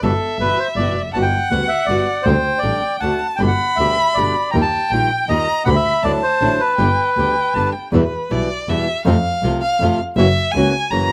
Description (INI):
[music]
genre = tango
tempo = 160 BPM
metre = 3/4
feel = rubato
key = G major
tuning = A4 = 441 Hz
[part]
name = bandoneon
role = melody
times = 0.0-7.7 s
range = A4 to Bb5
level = -21 LUFS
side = equal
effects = slapback echo
[part]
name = warm violin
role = second line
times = 0.0-11.1 s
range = B4 to B5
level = -24 LUFS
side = equal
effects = slapback echo
[part]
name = flamenco guitar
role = accompaniment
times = 0.0-11.1 s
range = B2 to G4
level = -24 LUFS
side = equal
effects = none
[part]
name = warm double bass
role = bass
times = 0.0-11.1 s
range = F1 to F2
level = -22 LUFS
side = equal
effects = none
[sound]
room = little or no reverb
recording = recorded outdoors, with no room sound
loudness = -18 LUFS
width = mono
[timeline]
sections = 0.0-7.9 A section; 7.9-11.1 B section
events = violin solo 7.9-11.1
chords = 0.0 Emadd9/G; 1.1 Gmaj7; 2.3 D7sus4; 3.0 D7; 3.4 G; 4.5 Ebadd9; 5.7 G/D; 6.0 Dadd9; 6.8 G; 7.9 Em; 9.1 F; 10.2 F#7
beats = | 0.02 0.40 0.77 | 1.14 1.51 1.89 | 2.26 2.64 3.02 | 3.40 3.78 4.16 | 4.54 4.92 5.29 | 5.67 6.04 6.41 | 6.79 7.16 7.55 | 7.93 8.31 8.69 | 9.06 9.44 9.81 | 10.19 10.55 10.93